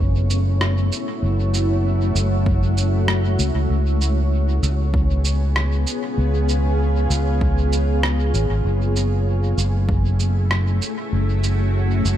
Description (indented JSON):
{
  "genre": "ambient dub",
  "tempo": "97 BPM",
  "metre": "4/4",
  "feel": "straight",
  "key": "F# minor",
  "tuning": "A4 = 440 Hz",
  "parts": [
    { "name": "granular cloud pad", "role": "sustained chords", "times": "0.0-12.2 s", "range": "A3 to C#5", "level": "-24 LUFS", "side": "left 1 dB", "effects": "built-in reverb" },
    { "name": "fingered electric bass", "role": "bass", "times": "0.0-12.2 s", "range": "F#1 to C#2", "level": "-18 LUFS", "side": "equal", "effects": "none" },
    { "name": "electronic shaker and rim click", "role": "drums", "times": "0.3-12.2 s", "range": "none", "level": "-26 LUFS", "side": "right 1 dB", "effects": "overdrive, dub echo" },
    { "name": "electronic kick drum", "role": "drums", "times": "2.5-10.0 s", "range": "none", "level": "-22 LUFS", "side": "equal", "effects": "overdrive" }
  ],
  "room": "little or no reverb",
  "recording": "none",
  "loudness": "-17 LUFS",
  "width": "side -11 dB against mid",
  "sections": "0.0-12.2 A section",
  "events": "none",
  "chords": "0.0 F#m7; 3.7 C#7; 8.7 F#m7"
}